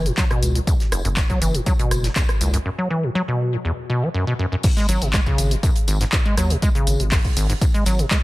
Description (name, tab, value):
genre	acid house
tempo	121 BPM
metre	4/4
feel	straight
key	G# phrygian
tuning	A4 = 439 Hz
part	acid bass, square	riff	0.0-8.2 s	F#1 to G#3	-23 LUFS	equal	sidechain pumping, ping-pong delay
part	saturated sub bass	bass	0.0-8.0 s	F#1 to D#2	-22 LUFS	equal	sidechain pumping
part	punchy analog drum machine	drums	0.1-8.2 s	crash cymbal, handclaps, hi-hat, rim click, shaker	-26 LUFS	equal	none
part	damped 70s drum kit	drums	0.2-8.2 s	hi-hat, snare drum, tambourine	-35 LUFS	equal	high-pass filter on hats, high-pass filter on snare, high-pass filter on perc, high-pass filter on room
part	electronic kick drum	drums	0.2-8.2 s	none	-20 LUFS	equal	none
room	studio reverb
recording	dense, heavily limited modern master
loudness	-18 LUFS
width	side -19 dB against mid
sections	0.0-4.6 A section; 4.6-8.2 B section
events	break 2.7-4.6; drop 4.6-8.2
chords	0.0 N.C.; 4.6 G#7(no3)